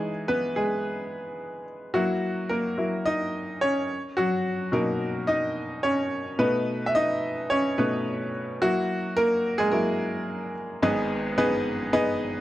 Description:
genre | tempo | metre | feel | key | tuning
pop | 108 BPM | 4/4 | straight | B major | A4 = 440 Hz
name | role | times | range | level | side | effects
bright baby grand piano | solo | 0.0-12.4 s | G#1 to E5 | -24 LUFS | equal | none
room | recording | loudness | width
small room ambience | dry, close 1970s-style studio recording | -24 LUFS | side -14 dB against mid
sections
0.0-10.8 A section; 10.8-12.4 B section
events
grand piano solo 0.0-10.8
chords
0.0 Emaj7; 1.9 F#7; 3.9 Badd9; 6.4 B7; 8.6 F#7; 10.8 G#m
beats
0.28 0.84 1.40 | 1.95 2.51 3.06 3.62 | 4.17 4.73 5.28 5.84 | 6.39 6.95 7.51 8.06 | 8.62 9.17 9.73 10.28 | 10.84 11.39 11.95

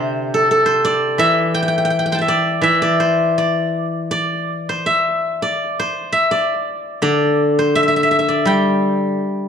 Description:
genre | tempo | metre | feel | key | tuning
chinese traditional, Chinese solo plucked strings | 83 BPM | 2/4 | rubato | unclear | A4 = 440 Hz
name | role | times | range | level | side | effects
steel-string zither | solo | 0.0-9.5 s | C3 to C6 | -15 LUFS | equal | none
room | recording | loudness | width
moderate recital hall reverb, RT60 1.6 s | dark, warm production | -15 LUFS | side -7 dB against mid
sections
0.0-9.5 A section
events
none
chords
none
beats
0.48 | 1.19 1.90 | 2.62 3.36 | 4.11 4.86 | 5.60 6.32 | 7.04 7.75 | 8.47 9.20

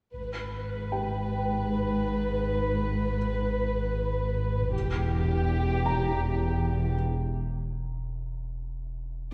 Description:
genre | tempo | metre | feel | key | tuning
cinematic | free time | none | none | G# harmonic minor | A4 = 440 Hz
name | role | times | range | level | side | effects
dark studio violin section | melody | 0.1-7.0 s | G4 to B4 | -35 LUFS | equal | none
dark chamber cello section | bass | 0.1-7.0 s | E2 to G#2 | -34 LUFS | equal | none
dark symphonic double bass section | bass | 0.1-6.9 s | E1 to G#1 | -35 LUFS | equal | none
punchy sub bass | drone | 0.1-9.3 s | E1 to G#1 | -37 LUFS | equal | none
felt-muted upright piano | texture | 0.9-9.3 s | G4 to A#5 | -39 LUFS | equal | none
room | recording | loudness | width
wet concert hall reverb, RT60 2.1 s | heard from further back in the room | -29 LUFS | mono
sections
0.1-9.3 A section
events
break 7.0-9.3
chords
0.1 G#m; 4.7 Em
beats
free time

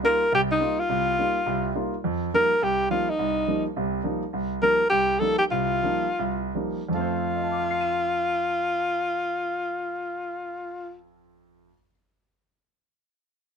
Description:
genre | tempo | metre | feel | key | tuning
jazz | 147-210 BPM | 4/4 | swing 60% on 8ths | F mixolydian | A4 = 440 Hz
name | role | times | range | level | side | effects
breathy alto saxophone | melody | 0.0-11.0 s | Eb4 to Bb4 | -23 LUFS | left 1 dB | none
warm concert grand piano | accompaniment | 0.0-11.9 s | C2 to Eb7 | -28 LUFS | right 2 dB | none
room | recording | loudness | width
light reverb | close, detailed microphones | -22 LUFS | side -6 dB against mid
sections
0.0-2.0 A section; 2.0-6.9 B section; 6.9-10.2 C section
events
slowing down 4.3-6.9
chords
0.0 F9sus4; 6.9 F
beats
0.03 0.32 0.60 | 0.89 1.18 1.46 1.75 | 2.03 2.32 2.60 2.89 | 3.17 3.46 3.75 4.03 | 4.32 4.61 4.90 5.20 | 5.51 5.83 6.17 6.54 | 6.93 7.34 7.75 8.16 | 8.57 8.97 9.38 9.79

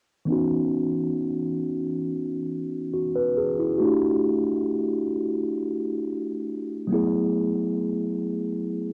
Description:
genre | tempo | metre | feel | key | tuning
R&B | 68 BPM | 4/4 | straight | C# minor | A4 = 439 Hz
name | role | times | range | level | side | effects
mellow tine electric piano | accompaniment | 0.3-8.9 s | E3 to B4 | -26 LUFS | equal | low-pass filter, cassette tape
room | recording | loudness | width
wet studio ambience, RT60 0.5 s | home recording on cassette | -26 LUFS | mono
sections
0.3-8.9 A section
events
filter sweep on tine electric piano 0.3-8.9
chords
0.3 C#m11; 3.8 Em11; 6.9 F#m11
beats
| 0.28 1.16 2.04 2.93 | 3.81 4.69 5.57 6.46 | 7.34 8.22

